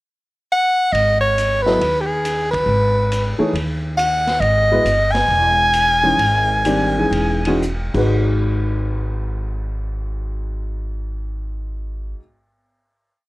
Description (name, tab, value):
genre	modal jazz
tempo	117-139 BPM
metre	4/4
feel	swing 67% on 8ths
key	G# minor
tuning	A4 = 440 Hz
part	clear soprano saxophone	melody	0.5-7.6 s	G4 to G#5	-16 LUFS	equal	none
part	upright bass	bass	0.9-12.1 s	E1 to D#2	-21 LUFS	equal	none
part	vintage drum kit	drums	0.9-8.0 s	crash cymbal, hi-hat, kick drum, ride cymbal, snare drum	-30 LUFS	equal	none
part	warm upright piano	accompaniment	1.7-12.2 s	G#2 to D#5	-21 LUFS	left 1 dB	none
room	light reverb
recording	none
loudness	-16 LUFS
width	side -19 dB against mid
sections	0.0-0.9 pickup bar; 0.9-8.1 A section; 8.1-12.2 final hit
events	band accent 2.5, 5.1; slowing down 4.4-8.1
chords	0.0 N.C.; 0.9 G#m; 4.4 C#madd9; 7.9 G#m7